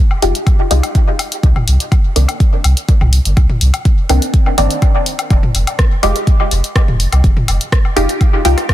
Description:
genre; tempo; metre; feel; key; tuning
dub techno; 124 BPM; 4/4; straight; F minor; A4 = 440 Hz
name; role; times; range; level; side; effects
electronic woodblock and toms; percussion; 0.1-8.7 s; none; -24 LUFS; left 2 dB; sidechain pumping on perc, sidechain pumping on toms, dub echo
filtered dub chord stab; stabs; 0.2-8.6 s; Eb3 to G4; -18 LUFS; left 1 dB; chorus, phaser, sidechain pumping, dub echo
warm sub bass; bass; 0.2-8.5 s; F1 to C2; -13 LUFS; equal; sidechain pumping
deep house drum kit; drums; 0.2-8.7 s; hi-hat, rim click; -20 LUFS; left 1 dB; soft clipping on snare
electronic kick drum; drums; 0.5-8.7 s; none; -11 LUFS; equal; none
room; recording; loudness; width
little or no reverb; dense, heavily limited modern master; -11 LUFS; side -14 dB against mid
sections
0.0-8.7 A section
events
none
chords
0.0 Fm9; 1.4 Cm9; 5.3 Fm9

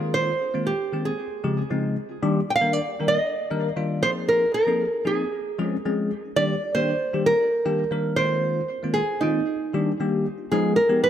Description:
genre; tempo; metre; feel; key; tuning
jazz; 116 BPM; 4/4; straight; Eb major; A4 = 441 Hz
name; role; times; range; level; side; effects
bell-like tine electric piano; accompaniment; 0.0-11.1 s; Db3 to Bb4; -25 LUFS; left 2 dB; phaser
nylon-string guitar; melody; 0.1-11.1 s; Eb4 to G5; -23 LUFS; right 2 dB; tape echo
room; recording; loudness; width
moderate plate reverb, RT60 2.4 s; none; -21 LUFS; side -10 dB against mid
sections
0.0-10.5 A section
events
none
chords
0.0 Ab69; 1.2 Dbmaj7; 2.2 Ebmaj7; 4.0 Ab69; 5.3 Dbmaj7; 6.4 Ebmaj7; 8.2 Ab69; 9.5 Ebmaj7; 10.5 Abm6

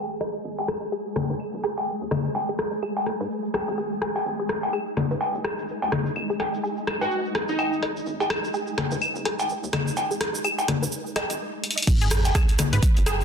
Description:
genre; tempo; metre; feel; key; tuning
minimal techno; 126 BPM; 4/4; swing 59% on 16ths; unclear; A4 = 444 Hz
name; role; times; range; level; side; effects
rubbery square bass; bass; 0.0-13.2 s; F#1 to G#2; -31 LUFS; right 1 dB; sidechain pumping, high-pass filter
flickering grainy texture; texture; 0.0-11.4 s; G#3 to G#4; -33 LUFS; equal; built-in reverb, sidechain pumping
cabasa; percussion; 0.1-13.2 s; none; -37 LUFS; right 6 dB; none
resonant blip pluck; riff; 0.2-13.1 s; G#4 to D#5; -32 LUFS; equal; chorus, sidechain pumping, digital delay
punchy analog drum machine; drums; 0.2-13.2 s; crash cymbal, hi-hat, rim click; -30 LUFS; equal; soft clipping on snare
electronic rim click, cowbell, claves and congas; percussion; 0.2-13.2 s; none; -26 LUFS; left 2 dB; soft clipping on snare
plucky unison lead; melody; 7.0-7.8 s; D#4 to F#4; -28 LUFS; right 2 dB; lush chorus, tape echo
breakbeat sampler-style drum kit; drums; 11.9-13.2 s; hi-hat, snare drum, tambourine; -41 LUFS; right 2 dB; none
electronic kick drum; drums; 11.9-12.9 s; none; -20 LUFS; right 1 dB; none
sub drop; sound effects; 12.0-13.2 s; none; -30 LUFS; right 1 dB; none
room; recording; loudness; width
moderate lush hall reverb, RT60 1.7 s, digital ambience; dense, heavily limited modern master, low-pass filter; -23 LUFS; side -6 dB against mid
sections
0.0-11.9 A section; 11.9-13.2 B section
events
filter sweep 0.0-11.9; drum fill 11.6; drop 11.9-13.2; impact 11.9-13.2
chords
0.0 G#5

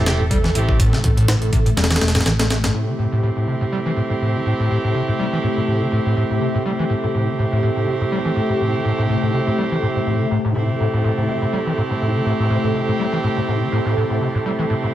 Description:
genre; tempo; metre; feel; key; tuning
breakbeat, breaks; 123 BPM; 4/4; swing 55% on 16ths; A minor pentatonic; A4 = 437 Hz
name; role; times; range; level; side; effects
phased analog pad; sustained chords; 0.0-14.9 s; C3 to A4; -24 LUFS; left 1 dB; phaser, chorus, sidechain pumping
overdriven acid bass; riff; 0.0-14.9 s; G2 to A3; -21 LUFS; equal; distortion, wide subtle chorus, digital delay
warm horn section; stabs; 0.0-14.9 s; A3 to G4; -23 LUFS; right 2 dB; vintage 12-bit sampler grit, digital delay
hollow-body short-scale picked electric bass; bass; 0.0-2.7 s; E1 to A1; -20 LUFS; equal; tube saturation
breakbeat sampler-style drum kit; drums; 0.1-2.7 s; hi-hat, kick drum, snare drum; -19 LUFS; equal; small room ambience
room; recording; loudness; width
light reverb, digital ambience; none; -17 LUFS; side -12 dB against mid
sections
0.0-2.8 A section; 2.8-14.9 B section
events
none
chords
0.0 Am7

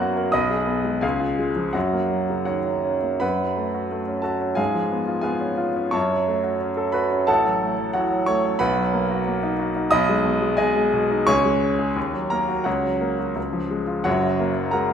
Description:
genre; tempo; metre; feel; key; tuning
classical, virtuoso piano study; 78-92 BPM; 2/4; rubato; F# major, F# minor from 3.2 s, F# major from 8.6 s; A4 = 440 Hz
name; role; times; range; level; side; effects
bright grand piano; solo; 0.0-14.9 s; F#1 to F#6; -20 LUFS; equal; none
room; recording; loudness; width
wet scoring stage reverb, RT60 1.5 s; minimal, uncompressed stereo recording; -20 LUFS; side -8 dB against mid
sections
0.0-3.2 A section; 3.2-14.1 B section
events
none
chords
0.3 G#m/B; 1.0 C#; 1.7 F#; 3.2 F#m; 4.6 C#7/G#; 5.9 F#m; 7.3 F#m/A; 8.6 Bmaj7; 9.9 G#m/B; 11.3 C#5; 12.0 D#m; 12.7 F#/C#; 13.4 C#; 14.1 F#

